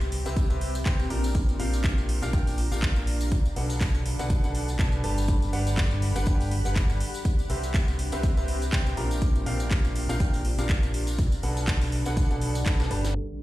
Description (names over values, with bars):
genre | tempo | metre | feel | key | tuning
piano house | 122 BPM | 4/4 | swing 56% on 16ths | G major | A4 = 440 Hz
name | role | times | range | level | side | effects
bright grand piano | riff | 0.0-13.4 s | Bb2 to Bb5 | -33 LUFS | equal | sidechain pumping, dub echo
overdriven fingered electric bass | bass | 0.0-13.1 s | G1 to C2 | -28 LUFS | equal | sidechain pumping
house drum kit | drums | 0.0-13.4 s | handclaps, hi-hat, shaker, snare drum | -35 LUFS | right 1 dB | none
tambourine | percussion | 0.0-13.4 s | none | -42 LUFS | left 2 dB | none
granular cloud pad | texture | 0.0-13.4 s | C4 to B5 | -37 LUFS | equal | built-in reverb, sidechain pumping
electronic kick drum | drums | 0.4-12.8 s | none | -24 LUFS | equal | none
trumpet with bucket mute | melody | 13.2-13.3 s | A4 | -44 LUFS | equal | none
impact | sound effects | 13.2-13.4 s | none | -38 LUFS | equal | none
room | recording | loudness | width
little or no reverb | played on a big sound system in a bare room, stone room reverb, low-pass filter | -23 LUFS | side -16 dB against mid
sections
0.0-13.2 A section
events
drum fill 12.7-13.2; impact 13.2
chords
0.0 Cmaj7; 1.1 Bb6; 3.3 Gmaj7; 7.0 Cmaj7; 9.0 Bb6; 11.2 Gmaj7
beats
0.37 0.86 | 1.35 1.84 2.33 2.83 | 3.32 3.81 4.30 4.79 | 5.28 5.78 6.27 6.76 | 7.25 7.74 8.23 8.73 | 9.22 9.71 10.20 10.69 | 11.19 11.68 12.17 12.66 | 13.15